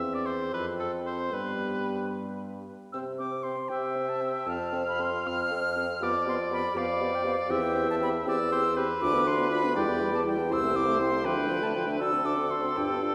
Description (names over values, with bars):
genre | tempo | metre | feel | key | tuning
quick classical-period movement for wind quintet | 73-81 BPM (dotted quarters) | 6/8 | rubato | C major | A4 = 440 Hz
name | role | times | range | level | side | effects
concert flute | melody | 0.0-13.1 s | A4 to F6 | -34 LUFS | equal | none
clear oboe | second line | 0.0-13.1 s | A4 to F5 | -35 LUFS | equal | none
clear French horn | accompaniment | 0.0-13.1 s | F3 to D4 | -37 LUFS | equal | none
dark clarinet | accompaniment | 0.0-13.1 s | B3 to C5 | -39 LUFS | equal | none
mellow bassoon | bass | 0.0-13.1 s | C2 to C3 | -34 LUFS | equal | none
room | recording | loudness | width
wet concert hall reverb, RT60 2.5 s | heard from further back in the room | -28 LUFS | mono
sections
0.0-2.9 A section; 2.9-13.1 B section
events
none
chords
0.0 C/E; 0.5 F5; 1.3 G; 2.9 C; 4.5 F; 6.0 G7/F; 7.5 C/E; 9.0 Bdim/D; 9.8 Em; 10.5 Am/C; 11.3 Dm; 12.0 D7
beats
0.52 | 1.32 2.13 | 2.94 3.70 | 4.47 5.26 | 6.02 6.76 | 7.50 8.27 | 9.01 9.76 | 10.51 11.25 | 12.01 12.77